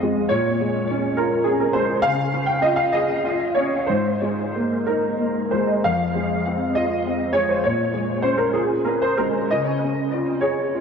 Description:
neoclassical minimalist piano; 61-71 BPM (dotted quarters); 6/8; rubato; A4 = 438 Hz
warm grand piano; solo; 0.0-10.8 s; F2 to G5; -19 LUFS; equal; ensemble chorus, ping-pong delay
wet plate reverb, RT60 2.5 s; dreamy mix soaked in reverb, nothing above 7.9 kHz; -19 LUFS; side -6 dB against mid
0.0-10.8 A section
0.3 Bbm7; 2.0 Db; 3.9 Abadd9; 5.8 Fm; 7.6 Bbm7; 9.5 Db
| 0.30 1.17 | 2.03 2.94 | 3.89 4.86 | 5.83 6.74 | 7.64 8.55 | 9.51 10.42

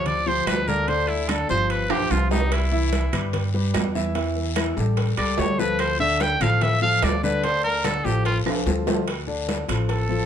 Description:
Afro-Cuban jazz; 146 BPM; 4/4; straight; D minor; A4 = 440 Hz
bright trumpet; melody; 0.0-10.3 s; Eb4 to G5; -24 LUFS; right 1 dB
warm concert grand piano; accompaniment; 0.0-10.3 s; D3 to E5; -26 LUFS; left 3 dB
upright bass; bass; 0.0-10.3 s; G1 to G2; -25 LUFS; right 1 dB
congas; percussion; 0.1-10.3 s; -32 LUFS; equal
guiro; percussion; 0.1-10.3 s; -36 LUFS; left 6 dB
timbales; percussion; 0.1-10.1 s; -30 LUFS; right 7 dB
claves; percussion; 0.5-8.7 s; -37 LUFS; right 7 dB
bongos; percussion; 2.5-10.1 s; -34 LUFS; left 4 dB
moderate studio reverb, RT60 0.8 s; -20 LUFS; side -9 dB against mid
0.0-9.1 A section; 9.1-10.3 B section
trumpet solo 0.0-9.1; drum fill 1.9-2.5, 8.5-9.1
0.0 G5; 1.7 G7; 2.5 Cmaj7; 4.2 Emadd11; 5.0 A7; 5.8 Dm
0.06 0.47 | 0.88 1.29 1.70 2.11 | 2.52 2.93 3.34 3.75 | 4.16 4.57 4.98 5.39 | 5.80 6.21 6.62 7.03 | 7.44 7.84 8.26 8.66 | 9.07 9.48 9.89

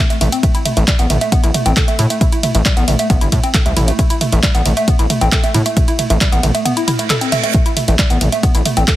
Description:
driving peak-time techno; 135 BPM; 4/4; straight; A minor; A4 = 440 Hz
woody wave-folded pluck; riff; 0.0-8.9 s; G3 to A4; -18 LUFS; right 1 dB; chorus, overdrive, sidechain pumping, dub echo
punchy analog drum machine; drums; 0.1-9.0 s; handclaps, hi-hat, ride cymbal, toms; -18 LUFS; right 1 dB
gritty driven synth bass; bass; 0.2-8.8 s; G1 to A2; -15 LUFS; equal; sidechain pumping
electronic kick drum; drums; 0.4-9.0 s; -14 LUFS; equal
reverse cymbal; sound effects; 6.8-7.5 s; -23 LUFS; right 7 dB
light reverb; heavily compressed radio sound, multiband compression; -12 LUFS; side -14 dB against mid
0.0-9.0 A section
reverse cymbal 6.8-7.5
| 0.43 0.88 1.32 1.77 | 2.21 2.65 3.10 3.54 | 3.99 4.43 4.88 5.32 | 5.77 6.21 6.66 7.10 | 7.54 7.99 8.43 8.88

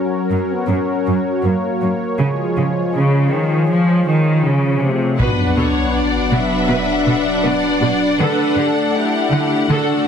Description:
cinematic, hybrid orchestral and electronic film score; 80 BPM; 4/4; straight; B minor; A4 = 440 Hz
mellow French horn section; sustained chords; 0.0-10.1 s; G#3 to E4; -22 LUFS; left 5 dB
warm analog pad; sustained chords; 0.0-10.1 s; E#3 to F#5; -21 LUFS; right 1 dB; chorus
rich symphonic cello section; bass; 0.3-9.8 s; F#2 to E#3; -18 LUFS; right 1 dB
rich symphonic violin section; melody; 5.2-10.1 s; F#5; -26 LUFS; left 3 dB
rich studio violin section; second line; 5.2-10.1 s; F#4 to E5; -23 LUFS; left 3 dB
rich symphonic viola section; accompaniment; 5.2-10.1 s; D4 to F#5; -21 LUFS; right 1 dB
taiko ensemble; drums; 5.2-6.7 s; -24 LUFS; equal
sub drop; sound effects; 5.2-8.2 s; -24 LUFS; equal
moderate scoring stage reverb, RT60 1.6 s; heavily compressed radio sound; -14 LUFS; side -7 dB against mid
0.0-5.2 A section; 5.2-10.1 A section
impact 5.2-8.2
0.0 F#; 2.2 C#; 5.2 Bm; 8.2 D
0.69 1.44 | 2.19 2.94 3.69 4.44 | 5.19 5.94 6.69 7.44 | 8.19 8.94 9.69

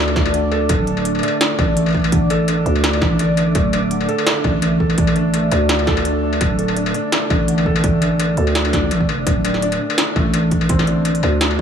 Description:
half-time drum and bass; 168 BPM; 4/4; swing 54% on 16ths, half-time; A4 = 440 Hz
deep dark ambient pad; sustained chords; 0.0-11.6 s; A3 to D6; -23 LUFS; right 2 dB; chorus, built-in reverb, sidechain pumping
felt-muted upright piano; arpeggios; 0.0-11.6 s; D3 to A4; -23 LUFS; left 2 dB; digital delay
growling 808-style bass; bass; 0.0-11.6 s; D1 to D2; -18 LUFS; right 1 dB
industrial drum kit; drums; 0.1-11.6 s; hi-hat, snare drum, struck metal; -21 LUFS; equal
electronic kick drum; drums; 0.2-11.6 s; -21 LUFS; equal
light reverb, digital ambience; -15 LUFS; side -8 dB against mid
0.0-9.3 A section; 9.3-11.6 A section
drop 0.0-9.3, 9.3-11.6
0.0 D5
0.34 | 0.70 1.05 1.41 1.77 | 2.12 2.48 2.84 3.20 | 3.55 3.91 4.27 4.62 | 4.98 5.34 5.70 6.05 | 6.41 6.77 7.12 7.48 | 7.84 8.20 8.55 8.91 | 9.27 9.62 9.98 10.34 | 10.70 11.05 11.41

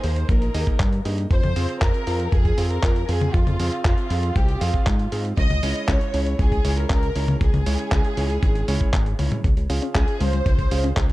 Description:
italo disco; 118 BPM; 4/4; straight; A4 = 441 Hz
dark studio violin section; melody; 0.0-11.0 s; F4 to Eb5; -28 LUFS; equal; digital delay
warm electric grand piano; stabs; 0.0-10.9 s; Ab3 to F5; -31 LUFS; right 2 dB; low-pass filter
fat analog bass; bass; 0.0-11.1 s; Ab1 to Ab2; -23 LUFS; equal
dusty soul sampler-style drum kit; drums; 0.0-11.1 s; handclaps, hi-hat, toms; -29 LUFS; left 1 dB; high-pass filter on hats, high-pass filter on snare, high-pass filter on toms, high-pass filter on room
electronic kick drum; drums; 0.3-11.1 s; -20 LUFS; equal
analog pluck; arpeggios; 9.4-11.1 s; Ab3 to Ab4; -30 LUFS; left 4 dB; chorus, tape echo
little or no reverb; dark, warm production; -19 LUFS; side -18 dB against mid
0.0-9.4 A section; 9.4-11.1 B section
drum fill 9.2; filter sweep on electric grand piano 9.4-11.1
0.0 Absus2; 1.3 Fm; 5.4 Dbm; 9.4 Db
0.29 0.80 | 1.31 1.82 2.32 2.83 | 3.34 3.85 4.36 4.87 | 5.38 5.88 6.39 6.90 | 7.41 7.92 8.43 8.93 | 9.44 9.95 10.46 10.97

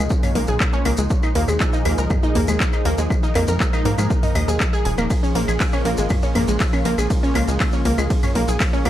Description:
melodic techno; 120 BPM; 4/4; straight; Bb minor; A4 = 440 Hz
lush unison pad; sustained chords; 0.0-8.9 s; Bb2 to Bb4; -28 LUFS; equal; chorus, phaser, sidechain pumping
wide unison pluck; arpeggios; 0.0-8.9 s; Ab3 to Eb6; -23 LUFS; equal; sidechain pumping, analog delay
tight sequencer bass; bass; 0.0-8.9 s; Eb1 to Ab2; -21 LUFS; equal; sidechain pumping
swarming drone; drone; 0.0-8.9 s; Bb2 to F3; -32 LUFS; left 2 dB
electronic kick drum; drums; 0.1-8.7 s; -21 LUFS; equal; studio reverb
maracas; percussion; 0.1-8.8 s; -35 LUFS; left 3 dB
house drum kit; drums; 0.2-8.9 s; claves, handclaps, hi-hat, ride cymbal, toms; -27 LUFS; left 1 dB; sidechain pumping on perc, studio reverb, sidechain pumping on hats, sidechain pumping on toms, sidechain pumping on cymbals
digital ambience; dry, gritty hardware recording; -17 LUFS; side -12 dB against mid
0.0-8.9 A section
0.0 Bbm7; 1.1 Ebsus4; 5.1 Bbm7
0.10 0.60 | 1.10 1.60 2.10 2.60 | 3.10 3.60 4.10 4.60 | 5.10 5.60 6.10 6.60 | 7.10 7.60 8.10 8.60

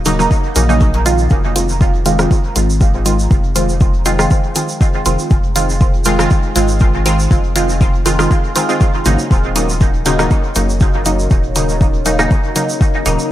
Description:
dub techno; 120 BPM; 4/4; swing 53% on 16ths; F phrygian; A4 = 439 Hz
deep dark ambient pad; sustained chords; 0.0-13.3 s; Eb4 to Db5; -28 LUFS; left 2 dB
soft dub sub bass; bass; 0.0-13.2 s; Eb1 to Bb1; -17 LUFS; equal; sidechain pumping
filtered dub chord stab; stabs; 0.1-13.3 s; Db3 to F4; -16 LUFS; right 1 dB; chorus, phaser, sidechain pumping, dub echo
deep house drum kit; drums; 0.1-13.2 s; hi-hat, rim click; -22 LUFS; equal
egg shaker; percussion; 0.1-13.3 s; -25 LUFS; right 3 dB; dub echo
electronic kick drum; drums; 0.3-12.9 s; -13 LUFS; equal
light reverb, digital ambience; echo-heavy mix; -11 LUFS; side -13 dB against mid
0.0-13.3 A section
0.0 Ebm7; 1.3 Fm7; 9.3 Ebm7
0.31 0.81 | 1.31 1.81 2.31 2.81 | 3.31 3.81 4.31 4.81 | 5.31 5.81 6.31 6.81 | 7.31 7.81 8.31 8.81 | 9.31 9.81 10.31 10.81 | 11.31 11.81 12.31 12.81 | 13.31

